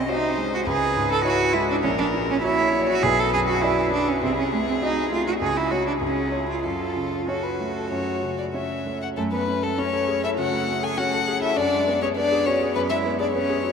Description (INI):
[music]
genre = quick classical-period movement for piano trio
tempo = 101 BPM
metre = 4/4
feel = rubato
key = F# minor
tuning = A4 = 439 Hz
[part]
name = warm violin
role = melody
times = 0.0-13.7 s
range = F#4 to G#5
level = -26 LUFS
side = left 5 dB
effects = none
[part]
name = rich cello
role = second line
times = 0.0-13.7 s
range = A3 to A4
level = -24 LUFS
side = right 3 dB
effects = none
[part]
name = warm concert grand piano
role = accompaniment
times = 0.0-13.7 s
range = A#1 to D#5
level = -26 LUFS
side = equal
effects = none
[sound]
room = wet huge ambient reverb, RT60 7.9 s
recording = in a vast, echoing space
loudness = -20 LUFS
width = side -6 dB against mid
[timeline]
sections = 0.0-9.2 A section; 9.2-13.7 B section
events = none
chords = 0.0 G#7/B#; 0.7 C#m; 1.8 F#/A#; 3.0 Bm; 4.2 Cdim7; 5.4 F#5/C#; 6.0 C#; 6.6 F#m; 11.6 E13/F# (rootless)